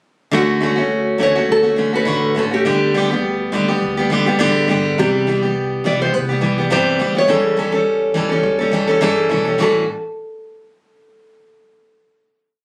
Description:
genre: acoustic pop.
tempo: 104 BPM.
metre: 4/4.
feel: swing 55% on 16ths.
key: A mixolydian.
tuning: A4 = 441 Hz.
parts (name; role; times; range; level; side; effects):
picked steel-string acoustic guitar; accompaniment; 0.3-9.8 s; A2 to A4; -18 LUFS; equal; none.
upright bass; bass; 0.3-9.9 s; E1 to A2; -31 LUFS; equal; none.
nylon-string guitar; melody; 0.4-9.9 s; F#4 to D5; -21 LUFS; equal; none.
room: little or no reverb.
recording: recorded on a phone in the room, studio ambience, compression.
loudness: -17 LUFS.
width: mono.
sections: 0.3-9.6 verse; 9.6-11.9 final chord.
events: none.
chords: 0.3 Dmaj7; 2.7 G/D; 5.0 Cmaj7; 7.3 A7/C#; 9.6 A6.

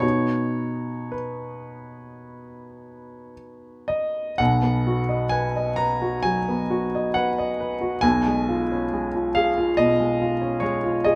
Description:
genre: classical, romantic nocturne for solo piano.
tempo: 53-72 BPM.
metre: 4/4.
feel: rubato.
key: B major.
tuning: A4 = 437 Hz.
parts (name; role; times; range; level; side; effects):
clear grand piano; solo; 0.0-11.2 s; B1 to A#5; -24 LUFS; equal; none.
room: light reverb.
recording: none.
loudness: -23 LUFS.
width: mono.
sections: 0.0-4.4 A section; 4.4-11.2 B section.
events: none.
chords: 0.0 B; 8.0 C#7/B.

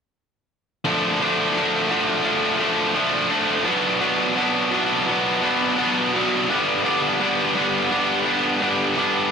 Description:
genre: rock.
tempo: 85 BPM.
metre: 4/4.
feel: straight.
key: unclear.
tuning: A4 = 440 Hz.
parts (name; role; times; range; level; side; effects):
distorted electric guitar; solo; 0.8-9.3 s; G2 to D4; -18 LUFS; equal; overdrive, cassette tape, analog delay.
room: light reverb, digital ambience.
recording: home recording on cassette.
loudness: -18 LUFS.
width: side -6 dB against mid.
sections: 0.9-9.3 A section.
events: none.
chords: 0.9 Dm; 3.7 Bm; 6.5 G.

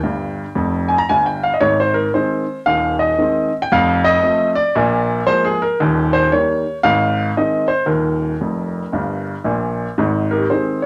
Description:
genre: jazz, stride piano.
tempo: 114 BPM.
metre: 4/4.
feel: swing 63% on 8ths.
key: Ab major.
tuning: A4 = 444 Hz.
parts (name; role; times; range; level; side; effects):
clear grand piano; solo; 0.0-10.9 s; Eb1 to Bb5; -17 LUFS; equal; none.
room: wet small room reverb, RT60 0.5 s.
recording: none.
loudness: -17 LUFS.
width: mono.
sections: 0.0-10.0 A section.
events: grand piano fill 0.0-1.6, 8.4-10.0.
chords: 0.0 N.C.; 1.6 Ab; 3.7 F7; 4.8 Bb7; 5.8 Eb7; 6.9 Ab; 7.9 Eb; 10.0 Ab.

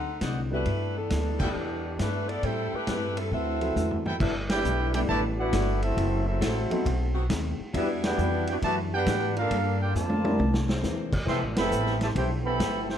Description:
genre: jazz, big band swing.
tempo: 136 BPM.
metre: 4/4.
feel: swing 67% on 8ths.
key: G major.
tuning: A4 = 440 Hz.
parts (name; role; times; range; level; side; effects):
warm saxophone section; melody; 0.0-4.0 s; E3 to F#5; -31 LUFS; equal; none.
hollow-body jazz guitar; accompaniment; 0.0-12.9 s; A2 to B4; -37 LUFS; left 7 dB; none.
upright bass; bass; 0.0-13.0 s; F1 to A2; -30 LUFS; equal; none.
clear trumpet section; stabs; 0.2-4.2 s; C4 to G5; -37 LUFS; right 1 dB; none.
vintage drum kit; drums; 0.2-13.0 s; crash cymbal, hi-hat, kick drum, ride cymbal, snare drum, toms; -31 LUFS; equal; none.
warm baby grand piano; accompaniment; 0.5-12.1 s; F#3 to B4; -32 LUFS; equal; none.
warm trombone section; second line; 3.3-13.0 s; C3 to G4; -32 LUFS; equal; none.
mellow trumpet section; melody; 4.2-13.0 s; C4 to C6; -30 LUFS; right 1 dB; none.
bright saxophone section; sustained chords; 5.5-13.0 s; D#3 to C5; -38 LUFS; right 1 dB; none.
room: light reverb.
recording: dark, warm production.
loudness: -24 LUFS.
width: side -9 dB against mid.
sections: 0.0-4.2 A section; 4.2-13.0 B section.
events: band accent 1.3, 4.4, 8.0, 11.5; drum fill 3.8-4.2, 9.9-10.8.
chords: 0.0 D7b9; 0.7 G69; 2.4 Am7; 3.3 D13; 4.2 G69; 6.0 F#m7b5; 6.9 B7b9; 7.7 Em9; 9.5 Gm9; 10.4 C9; 11.3 Fmaj9#11.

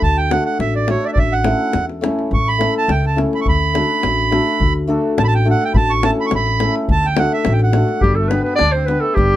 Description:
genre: balkan folk, Balkan wedding band.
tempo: 105 BPM.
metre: 2/4.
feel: swing 53% on 16ths.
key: D major.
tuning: A4 = 442 Hz.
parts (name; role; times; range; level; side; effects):
accordion; second line; 0.0-9.4 s; G3 to C#6; -19 LUFS; right 4 dB; none.
upright bass; bass; 0.0-9.4 s; G1 to E2; -19 LUFS; equal; none.
davul; percussion; 0.0-9.3 s; none; -20 LUFS; left 2 dB; none.
hammered dulcimer; accompaniment; 0.3-9.1 s; A3 to B4; -20 LUFS; left 3 dB; none.
warm clarinet; melody; 8.0-9.4 s; G4 to D5; -17 LUFS; equal; none.
room: light reverb.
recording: none.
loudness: -14 LUFS.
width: side -13 dB against mid.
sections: 0.0-8.0 A section; 8.0-9.4 B section.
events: accordion solo 0.0-8.0.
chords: 0.0 D; 1.2 A; 3.5 D; 5.8 A; 6.9 D; 8.0 G.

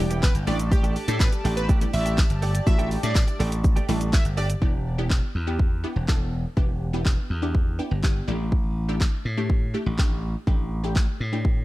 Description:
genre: dance-pop.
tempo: 123 BPM.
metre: 4/4.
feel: straight.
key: E minor.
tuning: A4 = 441 Hz.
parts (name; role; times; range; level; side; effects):
wide unison pluck; accompaniment; 0.0-11.6 s; G3 to A4; -32 LUFS; left 1 dB; analog chorus, sidechain pumping.
chorused pulse-width pad; sustained chords; 0.0-4.6 s; E4 to A5; -35 LUFS; left 1 dB; sidechain pumping.
slap bass; bass; 0.0-11.6 s; E1 to A2; -26 LUFS; equal; sidechain pumping.
direct-recorded clean electric guitar; riff; 0.1-4.5 s; A3 to G4; -34 LUFS; right 5 dB; ensemble chorus.
house drum kit; drums; 0.1-11.6 s; handclaps, hi-hat, kick drum, shaker; -22 LUFS; equal; none.
plucky unison lead; melody; 0.2-4.5 s; G4 to E5; -32 LUFS; right 1 dB; sidechain pumping, tape echo.
tambourine; percussion; 0.2-4.2 s; none; -42 LUFS; left 14 dB; none.
room: little or no reverb.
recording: dark, warm production.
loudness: -21 LUFS.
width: side -17 dB against mid.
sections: 0.0-4.6 A section; 4.6-11.6 B section.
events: drop 0.0-4.6.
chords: 0.5 A7sus4; 4.6 Em7; 8.3 A7sus4.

